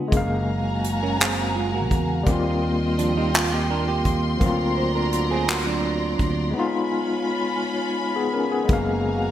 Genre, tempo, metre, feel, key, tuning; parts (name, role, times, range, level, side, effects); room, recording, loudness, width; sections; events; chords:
slow six-eight R&B; 56 BPM (dotted quarters); 6/8; straight; A4 = 443 Hz
semi-hollow electric guitar; second line; 0.0-6.5 s; F3 to C5; -28 LUFS; right 7 dB
overdriven tine electric piano; accompaniment; 0.0-9.3 s; Db3 to F5; -24 LUFS; left 2 dB; fast tremolo
warm studio string section; sustained chords; 0.1-9.3 s; F#3 to C6; -29 LUFS; equal
fretless electric bass; bass; 0.1-9.3 s; Gb1 to E2; -26 LUFS; equal
soft brush drum kit; drums; 0.1-8.9 s; handclaps, hi-hat, kick drum; -23 LUFS; equal; gated reverb
moderate lush hall reverb, RT60 1.8 s; bright 1980s-style digital production; -20 LUFS; side -11 dB against mid
0.1-9.3 A section
drums muted 6.5-8.7
0.1 Gbmaj9; 2.3 Eb69; 4.4 D7alt; 6.5 Db7; 8.7 Gbmaj9